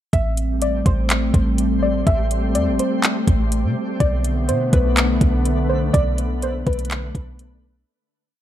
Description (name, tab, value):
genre	hip hop, atmospheric cloud-rap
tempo	124 BPM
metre	4/4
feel	half-time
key	A minor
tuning	A4 = 441 Hz
part	soft round pluck	melody	0.1-6.9 s	B4 to E5	-25 LUFS	left 1 dB	chorus, ping-pong delay
part	hollow soft pad	sustained chords	0.4-7.8 s	D3 to C4	-23 LUFS	left 1 dB	chorus
part	clean 808-style bass	bass	0.1-7.8 s	A1 to C3	-21 LUFS	equal	none
part	smooth R&B drum kit	drums	0.1-7.5 s	handclaps, hi-hat, kick drum	-19 LUFS	equal	none
part	twinkling granular texture	texture	0.5-7.8 s	A3 to C5	-31 LUFS	equal	built-in reverb
room	little or no reverb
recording	none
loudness	-17 LUFS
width	side -12 dB against mid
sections	0.1-7.9 verse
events	fade-out 5.9-7.9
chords	0.1 Am7; 4.0 Bm7